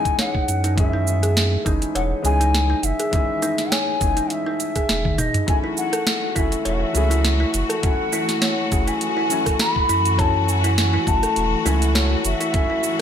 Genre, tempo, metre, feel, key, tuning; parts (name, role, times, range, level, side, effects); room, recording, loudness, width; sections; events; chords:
organic downtempo; 102 BPM; 4/4; swing 54% on 16ths; F# dorian; A4 = 440 Hz
mellow bansuri; melody; 0.0-13.0 s; D#5 to B5; -24 LUFS; left 2 dB; ping-pong delay
felt-muted upright piano; accompaniment; 0.0-13.0 s; D#3 to G#5; -29 LUFS; left 5 dB; sidechain pumping, digital delay
kalimba; arpeggios; 0.0-12.8 s; D#4 to C#5; -26 LUFS; equal; digital delay
afro-pop drum kit; drums; 0.1-13.0 s; hi-hat, shaker, snare drum, toms; -24 LUFS; right 1 dB; gated reverb
electronic kick drum; drums; 0.1-12.7 s; -22 LUFS; right 1 dB
warm sub bass; bass; 0.5-12.3 s; E1 to F#2; -21 LUFS; right 1 dB; sidechain pumping
bright studio string section; sustained chords; 5.5-13.0 s; E3 to F#4; -27 LUFS; left 2 dB; sidechain pumping
light reverb, studio reverb; bright 1980s-style digital production; -18 LUFS; side -9 dB against mid
0.0-13.0 A section
drum fill 5.0-5.5
0.0 C#madd9; 5.5 F#m7